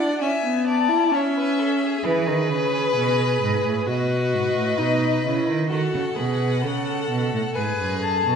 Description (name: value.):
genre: classical, baroque-style fugue for string quartet.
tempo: 65 BPM.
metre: 4/4.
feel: straight.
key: unclear.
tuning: A4 = 443 Hz.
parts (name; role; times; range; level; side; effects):
rich violin; melody; 0.0-8.4 s; B4 to A5; -26 LUFS; left 7 dB; none.
clear violin; second line; 0.0-8.4 s; G#4 to E5; -28 LUFS; left 3 dB; none.
rich viola; accompaniment; 0.0-8.4 s; B3 to B4; -24 LUFS; right 1 dB; none.
rich cello; bass; 2.0-8.4 s; F#2 to E3; -24 LUFS; right 2 dB; none.
room: wet recital hall reverb, RT60 1.4 s.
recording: heard from further back in the room, nothing above 10.4 kHz.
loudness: -20 LUFS.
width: side -6 dB against mid.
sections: 0.0-8.4 A section.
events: none.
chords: 0.2 A; 2.0 E; 3.9 B; 5.7 B7(no3); 7.6 E (rootless).